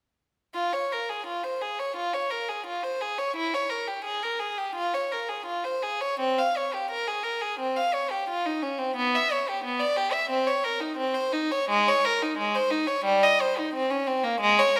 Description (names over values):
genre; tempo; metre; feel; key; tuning
classical, baroque-style suite movement for unaccompanied violin; 86 BPM; 4/4; uneven beats, rubato; F minor; A4 = 440 Hz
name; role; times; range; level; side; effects
rich violin; solo; 0.5-14.8 s; G3 to F5; -27 LUFS; equal; none
room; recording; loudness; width
moderate concert hall reverb, RT60 2.3 s; none; -27 LUFS; mono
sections
0.5-14.8 A section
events
none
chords
none